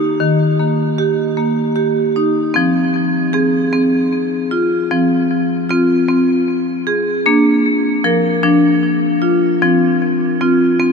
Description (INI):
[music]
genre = world meditative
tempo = 51 BPM (dotted quarters)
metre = 6/8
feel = straight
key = F dorian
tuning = A4 = 439 Hz
[part]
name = marimba with hard mallets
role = solo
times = 0.0-10.9 s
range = Eb3 to Bb4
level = -12 LUFS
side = equal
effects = ping-pong delay
[sound]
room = wet huge ambient reverb, RT60 7.3 s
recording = dreamy mix soaked in reverb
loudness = -13 LUFS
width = side -5 dB against mid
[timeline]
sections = 0.0-2.6 A section; 2.6-10.9 B section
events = none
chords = 0.0 Eb; 2.6 Fm; 7.3 Bb; 9.6 F5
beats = | 0.20 1.38 | 2.55 3.73 | 4.91 6.08 | 7.26 8.44 | 9.62 10.80